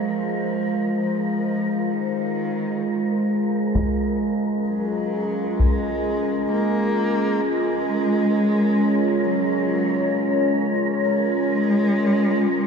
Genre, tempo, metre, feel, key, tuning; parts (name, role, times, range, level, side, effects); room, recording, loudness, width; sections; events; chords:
dark ambient drone; 66 BPM; 4/4; straight; A4 = 443 Hz
dark cello; melody; 0.0-12.7 s; Eb3 to Bb3; -26 LUFS; left 1 dB; ping-pong delay
dark analog pad; sustained chords; 0.0-12.7 s; Db4 to F5; -25 LUFS; equal; chorus, phaser
analog drone; drone; 0.0-12.7 s; Ab3; -24 LUFS; right 1 dB; chorus
wind-like tuned noise texture; texture; 0.0-12.7 s; Bb4; -31 LUFS; equal; built-in reverb
taiko ensemble; percussion; 3.7-5.8 s; -23 LUFS; left 1 dB; low-pass filter on perc
wet huge ambient reverb, RT60 8.7 s; dark, warm production; -19 LUFS; side -6 dB against mid
0.0-12.7 A section
fade-in on analog synth pad 0.0-12.7; fade-in on synth texture 0.0-12.7; fade-in on cello 0.0-12.7
0.0 Fm7; 3.7 Gbmaj9